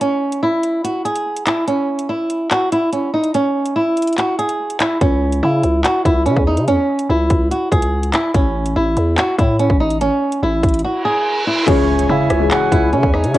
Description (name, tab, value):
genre	hip hop, drill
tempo	144 BPM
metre	4/4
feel	half-time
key	C# minor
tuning	A4 = 442 Hz
part	flamenco guitar	melody	0.0-13.4 s	C#4 to G#4	-16 LUFS	right 1 dB	low-pass filter
part	drill drum kit	drums	0.0-13.4 s	crash cymbal, handclaps, hi-hat, kick drum, rim click	-19 LUFS	equal	cassette tape
part	growling 808-style bass	bass	5.0-13.4 s	A1 to C#3	-18 LUFS	equal	none
part	reverse cymbal and impact	sound effects	11.0-13.3 s	none	-25 LUFS	right 1 dB	none
part	silver concert flute	second line	11.7-13.4 s	C#5 to F#5	-22 LUFS	right 9 dB	cassette tape, analog delay
part	warm grand piano	accompaniment	11.7-13.4 s	C#3 to G#4	-19 LUFS	left 8 dB	low-pass filter, cassette tape
part	pipe organ, foundations	sustained chords	11.7-13.4 s	C#5 to G#5	-25 LUFS	right 1 dB	cassette tape
room	light reverb, studio ambience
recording	home recording on cassette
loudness	-14 LUFS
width	side -15 dB against mid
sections	0.0-11.7 A section; 11.7-13.4 B section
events	break 0.0-5.0; kick muted 4.2-5.0; reverse cymbal 11.0-11.7; impact 11.7-13.3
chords	0.0 N.C.; 5.0 C#m; 8.3 A; 11.7 C#m